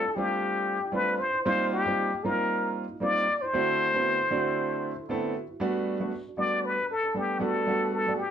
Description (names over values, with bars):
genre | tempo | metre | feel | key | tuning
jazz | 116 BPM | 4/4 | swing 56% on 16ths | unclear | A4 = 441 Hz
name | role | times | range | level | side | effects
trumpet with plunger mute | melody | 0.0-8.3 s | G4 to D5 | -26 LUFS | left 2 dB | slapback echo
warm concert grand piano | accompaniment | 0.0-8.3 s | D3 to A4 | -30 LUFS | right 2 dB | none
room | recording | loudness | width
moderate club reverb, RT60 0.5 s | none | -25 LUFS | side -8 dB against mid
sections
0.0-5.6 A section; 5.6-8.3 B section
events
none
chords
0.0 G9sus4; 1.5 F9sus4; 3.5 D13; 5.6 Gmaj9